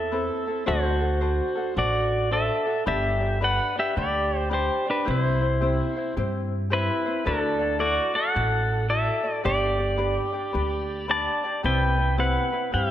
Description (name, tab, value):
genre	Hawaiian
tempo	109 BPM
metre	4/4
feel	swing 64% on 8ths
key	G major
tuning	A4 = 440 Hz
part	pedal steel guitar	melody	0.0-12.9 s	D4 to A5	-24 LUFS	equal	none
part	ukulele	accompaniment	0.0-12.9 s	C4 to D5	-31 LUFS	left 3 dB	none
part	upright bass	bass	0.0-12.9 s	G1 to G2	-27 LUFS	equal	none
room	moderate concert hall reverb, RT60 1.8 s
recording	none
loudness	-22 LUFS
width	side -11 dB against mid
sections	0.0-12.9 A section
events	none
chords	0.0 Amadd9; 0.7 D7; 2.9 G; 5.1 C; 7.3 Dadd9; 9.4 G; 11.6 Cmaj7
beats	0.12 | 0.67 1.22 1.77 2.31 | 2.86 3.41 3.96 4.51 | 5.06 5.61 6.16 6.71 | 7.25 7.80 8.35 8.90 | 9.45 9.99 10.54 11.09 | 11.64 12.19 12.73